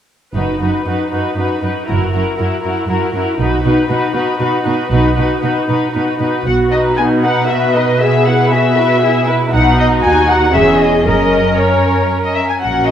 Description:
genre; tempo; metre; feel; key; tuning
quick classical-period movement for string orchestra; 117 BPM; 3/4; straight; B major; A4 = 440 Hz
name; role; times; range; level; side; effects
muted studio violin section; melody; 0.3-12.9 s; A#4 to G#5; -17 LUFS; left 4 dB; none
muted studio violin section; second line; 0.3-12.9 s; B3 to B4; -18 LUFS; equal; none
muted studio viola section; accompaniment; 0.3-12.9 s; D#4 to B4; -18 LUFS; equal; none
muted studio cello section; bass; 0.3-12.9 s; D#2 to B2; -18 LUFS; right 2 dB; none
muted studio double bass section; bass; 0.3-6.9, 9.5-12.9 s; E1 to B1; -19 LUFS; right 2 dB; none
room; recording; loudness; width
moderate scoring stage reverb, RT60 1.9 s; none; -12 LUFS; side -9 dB against mid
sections
0.3-6.5 A section; 6.5-12.9 B section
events
none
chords
0.3 B/F#; 1.9 F#7; 3.4 B; 8.0 E/B; 9.5 B; 10.6 C#m/E; 11.1 F#

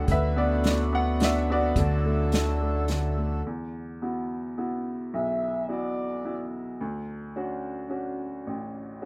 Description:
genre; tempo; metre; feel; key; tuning
acoustic folk-pop ballad; 107 BPM; 3/4; straight; unclear; A4 = 440 Hz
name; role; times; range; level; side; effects
clear upright piano; melody; 0.0-9.1 s; A1 to F#5; -31 LUFS; equal; none
hand-pumped harmonium; sustained chords; 0.0-3.4 s; D3 to B4; -36 LUFS; equal; none
fingered electric bass; bass; 0.0-3.4 s; D2; -29 LUFS; equal; none
unplugged drum kit; drums; 0.1-3.0 s; hi-hat, kick drum, snare drum; -30 LUFS; equal; none
clear French horn; second line; 5.1-6.5 s; D5 to E5; -32 LUFS; equal; none
room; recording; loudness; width
light reverb; none; -28 LUFS; mono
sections
0.0-3.4 A section; 3.4-9.1 B section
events
French horn solo 3.4-9.1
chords
0.1 Bm/D; 1.8 Dadd9; 3.4 Esus2; 6.8 Dmaj7

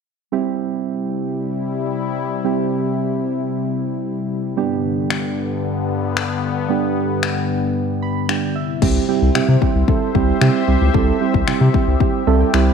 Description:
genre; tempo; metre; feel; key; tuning
dance-pop; 113 BPM; 4/4; straight; C major; A4 = 440 Hz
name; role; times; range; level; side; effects
soft electric-piano-like synth keys; accompaniment; 0.3-12.7 s; G3 to B5; -20 LUFS; right 11 dB; chorus, sidechain pumping
sweeping resonant pad; sustained chords; 0.3-12.7 s; G2 to E5; -23 LUFS; left 9 dB; chorus, sidechain pumping
pop drum kit; drums; 5.1-12.7 s; crash cymbal, finger snaps, kick drum; -20 LUFS; left 4 dB; none
saturated sub bass; bass; 8.8-12.7 s; C2 to C3; -16 LUFS; left 2 dB; sidechain pumping
room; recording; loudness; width
light reverb; 1960s-style stereo with parts hard left and right; -16 LUFS; side -6 dB against mid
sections
0.3-8.8 A section; 8.8-12.7 B section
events
synth keys fill 7.8-8.8, 12.0-12.7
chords
0.3 C; 4.6 G; 8.6 C

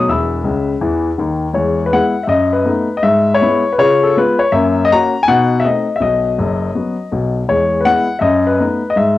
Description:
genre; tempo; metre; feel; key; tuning
jazz, stride piano; 162 BPM; 4/4; swing 66% on 8ths; E major; A4 = 440 Hz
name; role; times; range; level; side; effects
warm grand piano; solo; 0.0-9.2 s; E1 to E6; -12 LUFS; left 2 dB; cassette tape
room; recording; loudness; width
wet small room reverb, RT60 0.5 s; home recording on cassette; -12 LUFS; side -15 dB against mid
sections
0.0-1.6 A section; 1.6-9.2 A section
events
grand piano fill 0.4-1.6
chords
0.1 E5; 1.6 E; 2.3 B7/F#; 3.0 E/G#; 3.8 C#7; 4.5 F#; 5.3 B7b9; 6.0 B; 7.5 E; 8.2 B7/F#

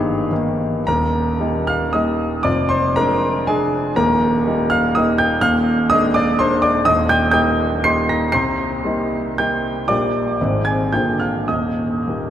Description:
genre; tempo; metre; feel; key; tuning
classical, romantic triple-time dance for piano with dotted rhythms; 96-132 BPM; 3/4; rubato; Eb major; A4 = 445 Hz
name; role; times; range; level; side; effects
clear grand piano; solo; 0.0-12.3 s; Eb1 to C7; -16 LUFS; equal; none
room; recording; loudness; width
wet cathedral reverb, RT60 5.0 s; in a vast, echoing space; -16 LUFS; side -10 dB against mid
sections
0.9-12.3 A section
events
none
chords
0.0 Eb/G; 0.9 Eb; 2.4 Ddim/F; 4.0 Eb; 5.4 Bb7/Eb; 6.9 Eb; 8.3 Cm7; 9.9 Gm/Bb; 10.4 Ab; 10.9 Bb7; 11.5 Eb

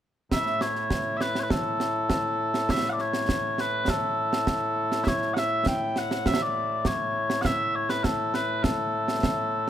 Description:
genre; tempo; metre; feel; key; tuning
scottish traditional, Scottish pipe music; 101 BPM; 4/4; straight; A major; A4 = 440 Hz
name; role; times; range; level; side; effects
mellow small bagpipes; melody; 0.3-9.7 s; A2 to G5; -25 LUFS; left 1 dB; none
concert snare drum and concert bass drum; drums; 0.3-9.7 s; none; -28 LUFS; right 2 dB; none
room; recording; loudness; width
light reverb; close, detailed microphones; -24 LUFS; side -10 dB against mid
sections
0.3-9.7 A section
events
none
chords
none

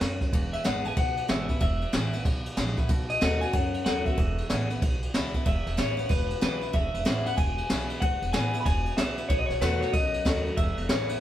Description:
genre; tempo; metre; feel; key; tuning
rockabilly; 187 BPM; 4/4; swing 63% on 8ths; E major; A4 = 441 Hz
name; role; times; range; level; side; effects
picked steel-string acoustic guitar; accompaniment; 0.0-11.2 s; E2 to F#4; -33 LUFS; left 1 dB; none
upright bass; bass; 0.0-11.1 s; E1 to F#2; -32 LUFS; right 1 dB; none
jazz brush drum kit; drums; 0.0-11.1 s; kick drum, ride cymbal, snare drum; -27 LUFS; equal; none
electric guitar through a small old amp; melody; 0.5-11.2 s; B4 to B5; -31 LUFS; left 2 dB; none
room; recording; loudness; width
light reverb; band playing live in one room; -24 LUFS; side -12 dB against mid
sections
0.0-5.5 A section; 5.5-11.2 B section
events
none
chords
0.3 E; 2.9 B7; 4.2 E; 9.3 B7; 10.6 E

